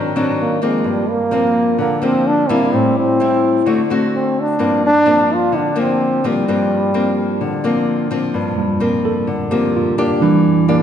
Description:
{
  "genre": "bossa nova",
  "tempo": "128 BPM",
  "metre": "4/4",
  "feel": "straight",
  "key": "G minor",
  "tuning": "A4 = 442 Hz",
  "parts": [
    { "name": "mellow trombone", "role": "melody", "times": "0.0-7.9 s", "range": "G3 to F4", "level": "-16 LUFS", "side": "right 1 dB", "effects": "none" },
    { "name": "nylon-string guitar", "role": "accompaniment", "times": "0.0-10.8 s", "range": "G2 to G4", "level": "-17 LUFS", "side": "left 2 dB", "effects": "none" },
    { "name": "tine electric piano", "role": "accompaniment", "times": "8.6-10.8 s", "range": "E3 to D5", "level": "-15 LUFS", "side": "right 3 dB", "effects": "none" }
  ],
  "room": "wet scoring stage reverb, RT60 1.8 s",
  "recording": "recorded in a church or concert hall, tape saturation",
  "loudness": "-14 LUFS",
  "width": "side -9 dB against mid",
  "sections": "0.0-8.3 A section; 8.3-10.8 B section",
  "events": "tine electric piano solo 8.3-10.8",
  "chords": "0.0 Ab7#11; 0.9 Gm7; 2.7 Am7; 3.7 D7; 4.6 Gm11; 10.2 Em7b5"
}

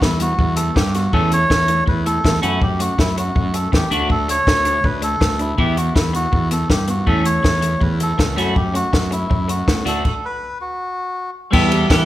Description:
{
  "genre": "indie rock",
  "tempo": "162 BPM",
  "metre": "4/4",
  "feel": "straight",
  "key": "E dorian",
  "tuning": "A4 = 437 Hz",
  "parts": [
    { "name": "melodica", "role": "melody", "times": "0.0-12.1 s", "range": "E4 to C#5", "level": "-21 LUFS", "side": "equal", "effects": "none" },
    { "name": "overdriven electric guitar", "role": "riff", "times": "0.0-12.1 s", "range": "E3 to G4", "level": "-23 LUFS", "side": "equal", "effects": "none" },
    { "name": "fuzz fingered electric bass", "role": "bass", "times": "0.0-12.1 s", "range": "C#2 to E3", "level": "-21 LUFS", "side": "equal", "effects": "overdrive" },
    { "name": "compact cocktail drum kit", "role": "drums", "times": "0.0-12.0 s", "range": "crash cymbal, hi-hat, kick drum, ride cymbal, snare drum", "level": "-19 LUFS", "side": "equal", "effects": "none" }
  ],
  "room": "moderate recital hall reverb, RT60 1.5 s",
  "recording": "recorded in a church or concert hall",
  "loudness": "-15 LUFS",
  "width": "side -14 dB against mid",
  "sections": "0.0-11.5 A section",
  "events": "stop 10.0-11.5",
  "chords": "0.0 Emadd9; 1.1 A/E; 2.4 F#m7; 3.9 D5; 5.6 Emadd9; 7.1 A/E; 8.4 F#m7; 9.9 D; 10.8 N.C.; 11.5 Em"
}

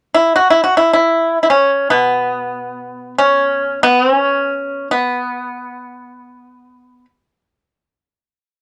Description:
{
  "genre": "chinese traditional, Chinese solo plucked strings",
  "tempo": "free time",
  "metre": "none",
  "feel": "none",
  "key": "unclear",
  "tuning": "A4 = 440 Hz",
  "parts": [
    { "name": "pipa", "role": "solo", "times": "0.1-7.0 s", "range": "B2 to F#4", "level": "-15 LUFS", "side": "equal", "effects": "cassette tape" }
  ],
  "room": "light reverb",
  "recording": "home recording on cassette",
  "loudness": "-15 LUFS",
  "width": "mono",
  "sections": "0.0-8.6 A section",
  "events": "none",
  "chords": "none"
}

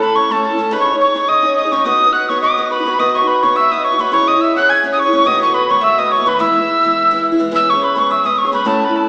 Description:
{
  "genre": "celtic folk, Celtic reel",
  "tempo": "211 BPM",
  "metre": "4/4",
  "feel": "swing 54% on 8ths",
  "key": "E major",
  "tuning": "A4 = 441 Hz",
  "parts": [
    { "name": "mellow tin whistle", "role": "melody", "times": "0.0-9.1 s", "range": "A5 to G#6", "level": "-13 LUFS", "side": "equal", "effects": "none" },
    { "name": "accordion", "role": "second line", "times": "0.0-7.2 s", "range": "A4 to G#5", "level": "-20 LUFS", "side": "equal", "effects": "none" },
    { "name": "mandolin", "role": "second line", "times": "0.0-9.1 s", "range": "A4 to G#5", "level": "-20 LUFS", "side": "equal", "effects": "none" },
    { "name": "picked steel-string acoustic guitar", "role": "accompaniment", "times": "0.0-9.1 s", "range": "A2 to C#5", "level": "-19 LUFS", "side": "equal", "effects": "none" }
  ],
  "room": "wet recital hall reverb, RT60 1.7 s",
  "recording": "recorded in a church or concert hall, small speaker sound",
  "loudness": "-11 LUFS",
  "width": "side -28 dB against mid",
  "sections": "0.0-7.5 A section; 7.5-9.1 A section",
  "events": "none",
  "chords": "0.0 A; 0.7 C#sus2; 1.9 B; 4.1 C#m; 5.3 B7; 6.4 E; 7.5 E6"
}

